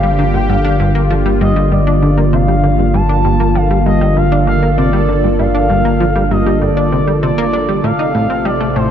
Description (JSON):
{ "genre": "ambient", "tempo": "98 BPM", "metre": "4/4", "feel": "straight", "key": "G minor", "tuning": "A4 = 440 Hz", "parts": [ { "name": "expressive synth lead", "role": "melody", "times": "0.0-8.9 s", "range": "C5 to A5", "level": "-18 LUFS", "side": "equal", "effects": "chorus, tape echo" }, { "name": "sweeping resonant pad", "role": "sustained chords", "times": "0.0-8.9 s", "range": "C3 to A4", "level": "-15 LUFS", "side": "right 1 dB", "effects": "chorus" }, { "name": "plucky analog bass", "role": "riff", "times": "0.0-8.9 s", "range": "G2 to Eb4", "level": "-18 LUFS", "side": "equal", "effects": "analog chorus, tape echo" }, { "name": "warm sub bass", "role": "bass", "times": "0.0-8.9 s", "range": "G1 to A1", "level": "-17 LUFS", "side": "equal", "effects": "none" } ], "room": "moderate lush hall reverb, RT60 2.5 s", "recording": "dark, warm production", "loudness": "-11 LUFS", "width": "side -9 dB against mid", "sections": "0.0-8.9 A section", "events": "none", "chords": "0.0 Gm7; 7.8 Adim", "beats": "| 0.49 1.10 1.72 2.33 | 2.94 3.55 4.17 4.78 | 5.39 6.00 6.62 7.23 | 7.84 8.45" }